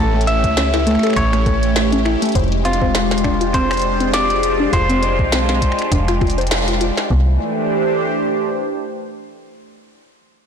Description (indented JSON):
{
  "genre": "IDM",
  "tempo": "101 BPM",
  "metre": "4/4",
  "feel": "swing 56% on 16ths",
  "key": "C major",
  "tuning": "A4 = 439 Hz",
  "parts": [
    { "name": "clean electric guitar", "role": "melody", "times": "0.0-6.5 s", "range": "F4 to E5", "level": "-22 LUFS", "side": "equal", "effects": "digital delay" },
    { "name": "phased analog pad", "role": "sustained chords", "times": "0.0-9.4 s", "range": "E3 to C5", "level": "-20 LUFS", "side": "equal", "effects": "phaser, chorus" },
    { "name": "warbly dusty pluck", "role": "arpeggios", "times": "0.0-7.4 s", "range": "A3 to C5", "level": "-22 LUFS", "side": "left 3 dB", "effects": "chorus, cassette tape, tape echo" },
    { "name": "metallic FM bass", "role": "bass", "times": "0.0-7.4 s", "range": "F1 to C#2", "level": "-20 LUFS", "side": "equal", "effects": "tube saturation" },
    { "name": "glitchy drum kit", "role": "drums", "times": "0.2-7.1 s", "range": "finger snaps, hi-hat, snare drum", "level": "-23 LUFS", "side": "equal", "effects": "soft clipping on snare, digital delay" },
    { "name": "electronic kick drum", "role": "drums", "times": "0.4-7.3 s", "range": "none", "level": "-20 LUFS", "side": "equal", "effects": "none" }
  ],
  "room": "moderate lush hall reverb, RT60 2.1 s",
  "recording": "blown-out, overdriven recording, overdrive",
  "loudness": "-14 LUFS",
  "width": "side -7 dB against mid",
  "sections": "0.0-7.1 A section; 7.1-9.5 B section",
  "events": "band accent 6.5",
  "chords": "0.0 A7; 2.4 Fm6; 7.1 C"
}